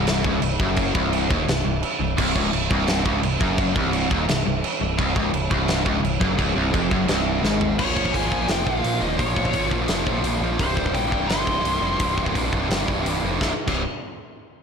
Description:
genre	heavy metal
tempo	171 BPM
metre	4/4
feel	straight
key	C phrygian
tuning	A4 = 440 Hz
part	distorted electric guitar	riff	0.0-13.8 s	C2 to F3	-24 LUFS	right 1 dB	overdrive
part	overdriven electric guitar	riff	0.0-7.8 s	C2 to Ab2	-27 LUFS	left 1 dB	none
part	growling picked electric bass	bass	0.0-13.8 s	C1 to Bb1	-27 LUFS	equal	overdrive
part	big rock drum kit	drums	0.1-13.8 s	china cymbal, crash cymbal, hi-hat, kick drum, snare drum, toms	-24 LUFS	equal	soft clipping on kick
part	smooth overdriven lead guitar	melody	7.8-13.0 s	C5 to C6	-27 LUFS	left 1 dB	ping-pong delay
room	light reverb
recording	blown-out, overdriven recording, overdrive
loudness	-19 LUFS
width	side -6 dB against mid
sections	0.0-7.8 A section; 7.8-13.4 B section; 13.4-14.6 C section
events	drum fill 7.4-7.8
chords	0.0 Cm; 7.8 Bbm; 10.6 C5

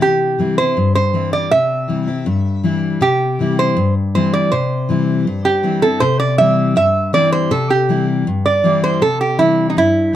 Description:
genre	country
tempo	160 BPM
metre	4/4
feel	straight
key	C major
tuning	A4 = 435 Hz
part	lap resonator guitar	melody	0.0-10.2 s	Eb4 to E5	-15 LUFS	right 2 dB	none
part	picked steel-string acoustic guitar	accompaniment	0.0-10.2 s	G2 to E4	-17 LUFS	left 3 dB	none
room	moderate studio reverb, RT60 0.5 s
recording	dark, warm production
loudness	-13 LUFS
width	side -11 dB against mid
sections	0.0-6.0 A section; 6.0-10.2 B section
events	none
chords	0.0 C

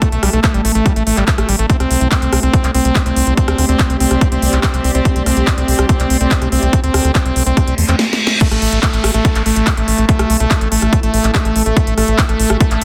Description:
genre	psychedelic trance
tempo	143 BPM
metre	4/4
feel	straight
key	A minor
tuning	A4 = 440 Hz
part	pulsing gated texture	sustained chords	0.0-12.8 s	A3	-27 LUFS	equal	none
part	overdriven acid bass	riff	0.0-12.8 s	G3 to C4	-21 LUFS	equal	distortion, sidechain pumping, digital delay
part	electronic kick drum	drums	0.0-12.7 s	none	-16 LUFS	equal	none
part	techno drum kit	drums	0.0-12.8 s	crash cymbal, handclaps, hi-hat, rim click, snare drum	-22 LUFS	equal	none
part	granular cloud pad	texture	0.0-12.8 s	C4 to C6	-28 LUFS	equal	built-in reverb, sidechain pumping
part	round analog bass	bass	0.1-12.8 s	A1 to E2	-18 LUFS	equal	none
part	reverse cymbal and downlifter	sound effects	7.8-11.8 s	none	-25 LUFS	equal	none
room	light reverb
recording	dense, heavily limited modern master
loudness	-14 LUFS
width	mono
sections	0.0-8.4 A section; 8.4-12.8 B section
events	reverse cymbal 7.8-8.4; drum fill 8.0-8.4; drop 8.4-12.8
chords	0.0 A5; 1.7 C5; 8.4 A5

